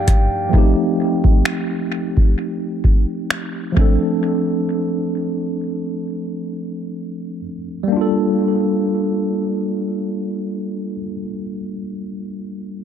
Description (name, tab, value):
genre	contemporary R&B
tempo	65 BPM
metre	4/4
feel	swing 54% on 16ths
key	G minor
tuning	A4 = 439 Hz
part	tine electric piano	accompaniment	0.0-12.8 s	G2 to A4	-20 LUFS	equal	fast stereo tremolo, analog delay
part	glass harmonica	sustained chords	0.0-0.5 s	G4 to G5	-25 LUFS	right 1 dB	sidechain pumping
part	downlifter	sound effects	0.5 s	none	barely audible	none	none
part	booming analog drum machine	drums	0.1-4.0 s	finger snaps, hi-hat, kick drum	-15 LUFS	equal	none
room	light reverb, digital ambience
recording	echo-heavy mix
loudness	-17 LUFS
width	side -9 dB against mid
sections	0.0-7.9 A section; 7.9-11.6 B section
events	none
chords	0.0 Ebmaj9#11/G; 0.5 F9; 3.8 Dm7; 7.9 Gm9